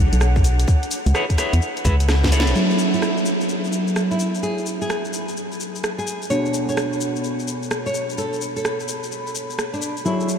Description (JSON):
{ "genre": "UK garage, two-step garage", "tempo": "128 BPM", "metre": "4/4", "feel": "swing 65% on 16ths", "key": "F# minor", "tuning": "A4 = 440 Hz", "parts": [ { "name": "warm analog pad", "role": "sustained chords", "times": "0.0-10.4 s", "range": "F#5 to B5", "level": "-36 LUFS", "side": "equal", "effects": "chorus, sidechain pumping" }, { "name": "organ-like FM bass", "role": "bass", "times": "0.0-2.5 s", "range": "B1 to E2", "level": "-16 LUFS", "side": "equal", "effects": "none" }, { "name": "garage drum kit", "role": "drums", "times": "0.1-10.4 s", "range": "hi-hat, rim click, shaker, snare drum", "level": "-26 LUFS", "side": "equal", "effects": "small room ambience" }, { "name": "electronic kick drum", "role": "drums", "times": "0.4-2.3 s", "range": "none", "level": "-18 LUFS", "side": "equal", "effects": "small room ambience" }, { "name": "clean electric guitar", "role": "stabs", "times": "1.1-10.4 s", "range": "B2 to E5", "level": "-24 LUFS", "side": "equal", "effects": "lush chorus, low-pass filter, analog delay" }, { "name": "nylon-string guitar", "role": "melody", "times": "2.6-10.3 s", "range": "D4 to C#5", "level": "-27 LUFS", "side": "equal", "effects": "analog delay" } ], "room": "wet huge ambient reverb, RT60 7.7 s", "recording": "dreamy mix soaked in reverb", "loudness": "-19 LUFS", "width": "side -8 dB against mid", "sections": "0.0-2.6 A section; 2.6-10.4 B section", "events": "drum fill 2.1-2.6; band accent 2.4", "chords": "0.0 B5; 0.7 C#m7; 2.6 F#m9; 6.3 Bm9" }